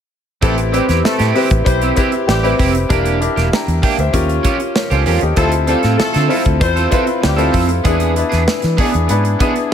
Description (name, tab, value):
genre	polished 1980s jazz-funk pop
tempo	97 BPM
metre	4/4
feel	straight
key	A minor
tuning	A4 = 439 Hz
part	warm horn section	second line	0.4-7.5 s	G3 to C5	-23 LUFS	left 2 dB	none
part	bright concert grand piano	accompaniment	0.4-9.7 s	B3 to Bb5	-17 LUFS	left 3 dB	wide subtle chorus
part	electric guitar at the edge of break-up	riff	0.4-9.7 s	Bb3 to A4	-20 LUFS	right 8 dB	analog chorus
part	vintage muted fingered electric bass	bass	0.4-9.3 s	E1 to E3	-17 LUFS	equal	none
part	modern studio drum kit	drums	0.4-9.7 s	hi-hat, kick drum, snare drum	-19 LUFS	equal	none
room	light reverb, small room reverb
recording	none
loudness	-12 LUFS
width	side -8 dB against mid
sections	0.4-9.7 A section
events	none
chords	0.4 Am7; 2.9 Em7b5; 4.1 D#9; 5.4 Dm7; 7.9 E7